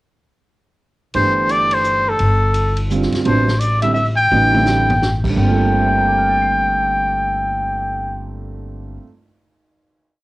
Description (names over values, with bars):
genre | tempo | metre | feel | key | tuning
modal jazz | 170 BPM | 3/4 | swing 63% on 8ths | G dorian | A4 = 440 Hz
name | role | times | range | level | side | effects
warm concert grand piano | accompaniment | 1.1-9.3 s | G2 to C7 | -21 LUFS | right 4 dB | cassette tape
upright bass | bass | 1.1-9.0 s | G1 to A1 | -20 LUFS | left 1 dB | none
vintage drum kit | drums | 1.1-5.3 s | crash cymbal, hi-hat, kick drum, ride cymbal, snare drum, toms | -26 LUFS | equal | cassette tape
warm trumpet | melody | 1.2-8.3 s | A4 to G5 | -16 LUFS | left 1 dB | none
room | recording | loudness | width
moderate spring reverb, RT60 1.1 s, small room ambience | home recording on cassette | -14 LUFS | side -19 dB against mid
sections
1.1-5.4 A section; 5.4-7.5 final chord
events
drum fill 4.3-5.0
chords
1.1 G9sus4; 3.3 Am11; 5.4 Gm11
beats
| 1.14 1.49 1.85 | 2.20 2.55 2.90 | 3.26 3.61 3.96 | 4.31 4.67 5.02 | 5.37 5.73 6.08 | 6.44 6.79 7.15